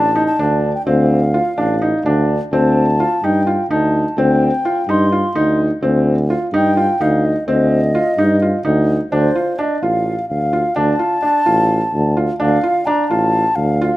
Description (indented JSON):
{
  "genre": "contemporary instrumental, chamber music in an uneven meter",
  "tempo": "255 BPM (eighths)",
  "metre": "7/8",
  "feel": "straight",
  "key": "D phrygian",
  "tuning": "A4 = 441 Hz",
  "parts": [
    { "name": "mellow baroque flute", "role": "melody", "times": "0.0-14.0 s", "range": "C5 to C6", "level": "-19 LUFS", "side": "left 1 dB", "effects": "none" },
    { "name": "felt-muted upright piano", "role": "arpeggios", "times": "0.0-14.0 s", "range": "C4 to F4", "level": "-18 LUFS", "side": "right 1 dB", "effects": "none" },
    { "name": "clear tuba", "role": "bass", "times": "0.0-13.9 s", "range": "A1 to G2", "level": "-17 LUFS", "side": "equal", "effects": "none" }
  ],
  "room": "light reverb",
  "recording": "close, detailed microphones",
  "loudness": "-13 LUFS",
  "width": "side -16 dB against mid",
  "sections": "0.0-9.1 A section; 9.1-14.0 B section",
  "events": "none",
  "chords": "0.0 Dm7; 2.5 Cm/D; 9.1 Dm",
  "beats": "0.15 0.39 0.62 | 0.86 1.10 1.33 1.57 1.81 2.04 2.28 | 2.52 2.76 2.99 3.23 3.46 3.70 3.94 | 4.17 4.41 4.65 4.88 5.12 5.35 5.59 | 5.83 6.06 6.30 6.53 6.77 7.00 7.24 | 7.47 7.71 7.94 8.18 8.41 8.65 8.88 | 9.12 9.35 9.59 9.82 10.06 10.29 10.53 | 10.76 10.99 11.23 11.46 11.70 11.93 12.17 | 12.40 12.64 12.87 13.11 13.34 13.57 13.81"
}